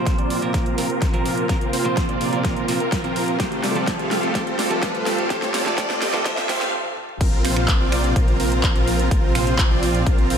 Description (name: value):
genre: EDM, festival progressive house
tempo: 126 BPM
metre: 4/4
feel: straight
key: unclear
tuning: A4 = 440 Hz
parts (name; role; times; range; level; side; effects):
- clean electric guitar; accompaniment; 0.0-6.6 s; Bb2 to C5; -27 LUFS; right 3 dB; sidechain pumping, analog delay
- lush unison pad; sustained chords; 0.0-10.4 s; C3 to Bb4; -27 LUFS; right 1 dB; chorus, sidechain pumping
- big supersaw lead; riff; 0.0-10.4 s; A3 to F5; -24 LUFS; right 1 dB; sidechain pumping, low-pass filter, analog delay
- riser; sound effects; 2.2-6.7 s; none; -31 LUFS; left 1 dB; none
- big-room dance drum kit; drums; 0.1-10.4 s; crash cymbal, finger snaps, handclaps, hi-hat, snare drum, toms; -27 LUFS; equal; overdrive
- electronic kick drum; drums; 0.1-10.2 s; none; -21 LUFS; left 1 dB; none
- detuned saw bass; bass; 7.2-10.4 s; Bb1; -23 LUFS; equal; sidechain pumping
room: moderate plate reverb, RT60 2.0 s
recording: dreamy mix soaked in reverb, high-pass filter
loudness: -18 LUFS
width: side -7 dB against mid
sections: 0.0-7.2 A section; 7.2-10.4 B section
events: build-up 0.0-7.2; drum fill 0.0-6.7, 6.7-7.2; filter sweep on supersaw synth 0.0-7.2; filter sweep 0.0-7.2; riser 2.2-6.7; stop 6.7-7.2; drop 7.2-10.4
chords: 0.0 Bbsus2; 3.4 Fadd9; 7.2 Bbsus2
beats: 0.07 0.54 1.02 | 1.49 1.97 2.45 2.92 | 3.40 3.88 4.35 4.83 | 5.30 5.78 6.26 6.73 | 7.21 7.68 8.16 8.64 | 9.11 9.59 10.07